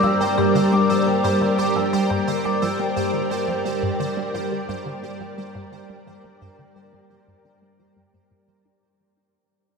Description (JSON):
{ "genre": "ambient, sequencer-driven space music", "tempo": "87 BPM", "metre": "4/4", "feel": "straight", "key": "G minor", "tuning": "A4 = 440 Hz", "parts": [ { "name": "string machine, full ensemble", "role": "sustained chords", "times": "0.0-8.8 s", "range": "G3 to D5", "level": "-22 LUFS", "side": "equal", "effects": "ensemble chorus, shimmer reverb" }, { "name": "vibraphone with medium mallets", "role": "arpeggios", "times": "0.0-3.1 s", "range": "G4 to E6", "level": "-25 LUFS", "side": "moving between left 6 dB and right 1 dB", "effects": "auto-pan, shimmer reverb, analog delay" }, { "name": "resonant blip pluck", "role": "riff", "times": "0.0-8.7 s", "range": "G2 to D4", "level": "-29 LUFS", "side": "right 1 dB", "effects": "phaser, wide subtle chorus, analog delay" }, { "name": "pulsing gated texture", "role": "texture", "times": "0.0-8.8 s", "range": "C5", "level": "-30 LUFS", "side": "right 5 dB", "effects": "chorus, built-in reverb, shimmer reverb" } ], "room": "wet huge ambient reverb, RT60 8.2 s", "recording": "none", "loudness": "-19 LUFS", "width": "side -5 dB against mid", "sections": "0.0-8.8 A section", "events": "fade-out 0.0-8.8; filter sweep on synth arpeggio sound 0.0-8.8", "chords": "0.0 Gm", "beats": "| 0.55 1.24 1.93 2.62 | 3.31 4.00 4.69 5.38 | 6.07 6.76 7.45 8.14" }